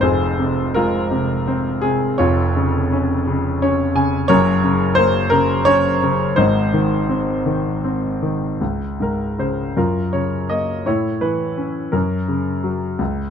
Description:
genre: classical, lyrical solo piano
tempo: 50-59 BPM (dotted quarters)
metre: 6/8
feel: rubato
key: Db major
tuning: A4 = 440 Hz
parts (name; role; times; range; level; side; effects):
- clear grand piano; solo; 0.0-13.3 s; F1 to Ab5; -16 LUFS; equal; none
room: light reverb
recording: close, detailed microphones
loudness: -16 LUFS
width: side -8 dB against mid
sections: 0.0-8.6 A section; 8.6-13.3 B section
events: grand piano fill 3.3-4.3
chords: 0.0 Fm; 2.2 Db/F; 4.3 Gb; 6.4 Ab; 8.6 Db5; 9.8 Gbmaj7; 10.9 A; 11.9 Gb

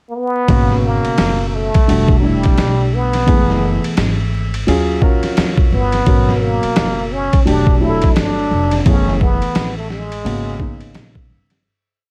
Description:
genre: hip hop, jazz-hop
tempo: 86 BPM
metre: 4/4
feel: swing 61% on 16ths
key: unclear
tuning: A4 = 440 Hz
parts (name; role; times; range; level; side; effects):
- trombone with plunger mute; melody; 0.1-11.3 s; F#3 to E4; -22 LUFS; equal; none
- dark grand piano; accompaniment; 0.5-11.5 s; B2 to A#4; -22 LUFS; equal; none
- upright bass; bass; 0.5-11.6 s; E1 to E#2; -22 LUFS; equal; none
- trip hop sampler-style drum kit; drums; 0.5-11.6 s; hi-hat, kick drum, ride cymbal, snare drum; -19 LUFS; equal; overdrive
room: little or no reverb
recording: dark, warm production, vinyl crackle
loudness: -15 LUFS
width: mono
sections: 0.0-0.5 pickup bar; 0.5-11.6 A section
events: fade-out 8.9-11.6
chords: 0.5 G#m11; 1.9 Em11; 3.3 F#m11; 4.7 D#m11; 6.1 G#m11; 7.5 Em11; 8.9 F#m11; 10.3 G#m11

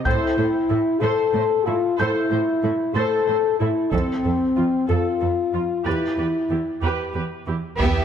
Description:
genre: cinematic, hybrid orchestral and electronic film score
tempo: 62 BPM (dotted quarters)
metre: 6/8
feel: straight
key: E phrygian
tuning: A4 = 438 Hz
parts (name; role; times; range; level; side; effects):
- felt-muted upright piano; texture; 0.0-7.8 s; G5 to A6; -32 LUFS; left 1 dB; tape echo
- dark symphonic viola section; accompaniment; 0.1-8.0 s; E4 to C5; -28 LUFS; right 2 dB; none
- dark French horn section; sustained chords; 0.1-8.0 s; E3 to A4; -21 LUFS; left 3 dB; none
- rich symphonic cello section; bass; 0.1-8.0 s; E2 to B3; -26 LUFS; right 3 dB; none
- taiko ensemble; drums; 0.1-8.0 s; none; -26 LUFS; right 1 dB; none
- warm symphonic violin section; melody; 7.8-8.0 s; E5; -29 LUFS; left 2 dB; none
- warm symphonic violin section; second line; 7.8-8.0 s; G4; -26 LUFS; left 1 dB; none
- warm symphonic double bass section; bass; 7.8-8.0 s; E2; -22 LUFS; right 4 dB; none
room: moderate concert hall reverb, RT60 2.2 s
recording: none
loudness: -19 LUFS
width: side -8 dB against mid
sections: 0.0-7.8 A section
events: band accent 7.8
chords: 0.1 Am; 3.9 F; 5.9 Em

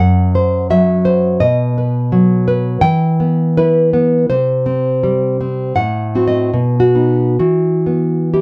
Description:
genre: romantic piece for solo classical guitar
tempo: 63-88 BPM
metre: 4/4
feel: rubato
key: E minor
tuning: A4 = 436 Hz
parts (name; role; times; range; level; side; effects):
- nylon-string guitar; solo; 0.0-8.4 s; F#2 to G5; -14 LUFS; equal; none
room: light reverb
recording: dry, close 1970s-style studio recording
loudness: -14 LUFS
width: mono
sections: 0.0-8.4 A section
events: none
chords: 0.0 Esus2/F#; 1.4 B; 2.8 Em; 4.3 C5; 5.8 F#dim/A; 6.5 B; 7.4 E5

